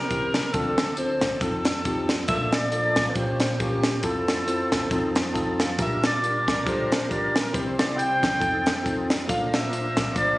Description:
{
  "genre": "uptempo gospel",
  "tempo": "137 BPM",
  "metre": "4/4",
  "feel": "swing 57% on 8ths",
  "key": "F major",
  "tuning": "A4 = 445 Hz",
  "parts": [
    { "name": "breathy alto saxophone", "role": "melody", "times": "0.0-10.4 s", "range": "G4 to G5", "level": "-26 LUFS", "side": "equal", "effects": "slapback echo" },
    { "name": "tine electric piano", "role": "accompaniment", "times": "0.0-10.4 s", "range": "Bb1 to A5", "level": "-28 LUFS", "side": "left 1 dB", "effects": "fast stereo tremolo" },
    { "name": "warm studio string section", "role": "sustained chords", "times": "0.0-10.4 s", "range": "F3 to C5", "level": "-35 LUFS", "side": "equal", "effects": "none" },
    { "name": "crisp fusion drum kit", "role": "drums", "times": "0.1-10.3 s", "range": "hi-hat, kick drum, snare drum", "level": "-26 LUFS", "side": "equal", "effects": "none" },
    { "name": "tonewheel organ", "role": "sustained chords", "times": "2.3-10.4 s", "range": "F3 to C5", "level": "-33 LUFS", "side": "right 2 dB", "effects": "slow rotary speaker, overdrive, chorus vibrato" }
  ],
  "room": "light reverb, small room ambience",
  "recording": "recorded on a phone in the room, studio reverb, compression, nothing above 10.7 kHz",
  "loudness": "-22 LUFS",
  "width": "side -19 dB against mid",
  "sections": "0.0-10.4 A section",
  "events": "tine electric piano fill 5.1-5.8",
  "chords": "0.0 C7; 0.5 Dm7; 1.4 F7; 2.3 Bbmaj7; 3.2 Bbm6; 4.0 Fmaj7; 4.9 F7; 5.8 Bb6; 7.5 C; 8.4 F7; 9.3 Bbmaj7",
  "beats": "0.11 | 0.54 0.98 1.42 1.85 | 2.29 2.73 3.17 3.60 | 4.04 4.48 4.92 5.35 | 5.79 6.23 6.67 7.10 | 7.54 7.98 8.42 8.85 | 9.29 9.73 10.17"
}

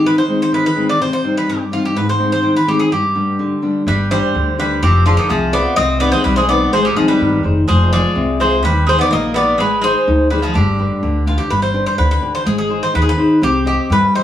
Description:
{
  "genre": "greek folk, Greek bouzouki band",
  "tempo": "126 BPM",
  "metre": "2/4",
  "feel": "straight",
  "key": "G phrygian dominant",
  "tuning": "A4 = 440 Hz",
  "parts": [
    { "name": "Greek bouzouki", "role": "melody", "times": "0.0-14.2 s", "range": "F4 to Eb5", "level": "-17 LUFS", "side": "equal", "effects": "slapback echo" },
    { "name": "flamenco guitar", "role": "accompaniment", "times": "0.0-14.2 s", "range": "G2 to Eb5", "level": "-17 LUFS", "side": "left 2 dB", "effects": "none" },
    { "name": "Greek bouzouki", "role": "second line", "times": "3.9-11.2 s", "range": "C3 to C4", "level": "-20 LUFS", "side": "equal", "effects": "none" },
    { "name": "upright bass", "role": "bass", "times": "3.9-14.1 s", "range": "F1 to G2", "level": "-18 LUFS", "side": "equal", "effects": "none" }
  ],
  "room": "wet studio reverb, RT60 0.6 s",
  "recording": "heard from further back in the room",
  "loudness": "-13 LUFS",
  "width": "side -11 dB against mid",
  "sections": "0.0-3.9 A section; 3.9-11.5 B section; 11.5-14.2 A section",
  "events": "none",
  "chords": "0.0 Ab; 1.0 Cm; 2.0 Ab; 2.9 G; 4.8 Fm; 5.8 Cm; 6.7 Ab; 7.7 Fm; 8.6 Eb; 9.6 Ab; 10.5 G; 12.5 Ab; 13.4 Cm",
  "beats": "| 0.05 0.52 | 1.00 1.48 | 1.96 2.43 | 2.91 3.39 | 3.86 4.34 | 4.82 5.29 | 5.77 6.25 | 6.73 7.20 | 7.68 8.16 | 8.64 9.11 | 9.59 10.07 | 10.55 11.03 | 11.51 11.98 | 12.46 12.94 | 13.42 13.90"
}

